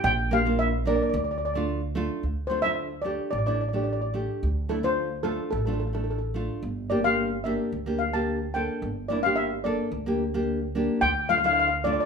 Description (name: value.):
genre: calypso.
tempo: 109 BPM.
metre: 4/4.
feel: straight.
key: D minor.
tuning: A4 = 439 Hz.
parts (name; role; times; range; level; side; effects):
steel pan; melody; 0.0-12.1 s; A4 to A5; -26 LUFS; left 2 dB; none.
nylon-string guitar; accompaniment; 0.0-12.1 s; A3 to Bb4; -28 LUFS; right 1 dB; none.
upright bass; bass; 0.0-12.0 s; G1 to D2; -31 LUFS; right 1 dB; none.
room: moderate large studio reverb, RT60 0.9 s.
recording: band playing live in one room.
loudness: -24 LUFS.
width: side -6 dB against mid.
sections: 0.0-2.2 A section; 2.2-11.0 B section; 11.0-12.1 A section.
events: none.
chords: 0.0 Gm7/Bb; 1.1 Dm; 6.6 Gm; 11.0 Dm.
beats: | 0.04 0.59 1.13 1.68 | 2.23 2.77 3.32 3.87 | 4.42 4.97 5.52 6.07 | 6.62 7.17 7.72 8.27 | 8.82 9.37 9.92 10.47 | 11.02 11.57.